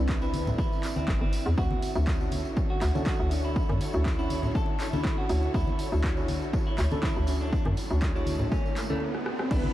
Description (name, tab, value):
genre	deep house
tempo	121 BPM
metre	4/4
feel	swing 53% on 16ths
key	unclear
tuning	A4 = 440 Hz
part	warbly tape-like pad	sustained chords	0.0-9.7 s	D3 to B5	-41 LUFS	right 2 dB	none
part	deep mellow chord stab	stabs	0.0-9.7 s	C3 to C#5	-35 LUFS	equal	chorus, sidechain pumping, diffuse ambient delay
part	hollow knocking FM bass	bass	0.0-9.6 s	G1 to F#2	-28 LUFS	equal	sidechain pumping
part	warm studio string section	texture	0.0-9.0 s	E4 to D5	-40 LUFS	left 1 dB	sidechain pumping
part	electronic kick drum	drums	0.1-9.6 s	none	-29 LUFS	equal	overdrive
part	punchy analog drum machine	drums	0.1-9.6 s	crash cymbal, handclaps, hi-hat, rim click	-38 LUFS	equal	overdrive
part	tambourine	percussion	0.1-9.6 s	none	-48 LUFS	right 3 dB	none
part	clean electric guitar	melody	0.2-9.7 s	A3 to A4	-37 LUFS	right 1 dB	vintage 12-bit sampler grit, ping-pong delay
part	congas	percussion	0.3-9.7 s	none	-35 LUFS	left 1 dB	none
part	riser	sound effects	7.1-9.5 s	none	-37 LUFS	equal	none
part	string machine, violins	texture	9.5-9.7 s	B4 to B5	-38 LUFS	right 5 dB	ensemble chorus
room	moderate huge ambient reverb, RT60 8.3 s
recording	dreamy mix soaked in reverb, vinyl crackle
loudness	-25 LUFS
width	side -14 dB against mid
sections	0.0-9.5 A section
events	riser 7.1-9.5; stop 9.0-9.5; drum fill 9.1-9.5; band accent 9.4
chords	0.0 Cmaj9; 1.6 Dmaj9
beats	0.09 0.58 1.08 | 1.58 2.07 2.57 3.06 | 3.56 4.06 4.55 5.05 | 5.54 6.04 6.54 7.03 | 7.53 8.02 8.52 9.01 | 9.51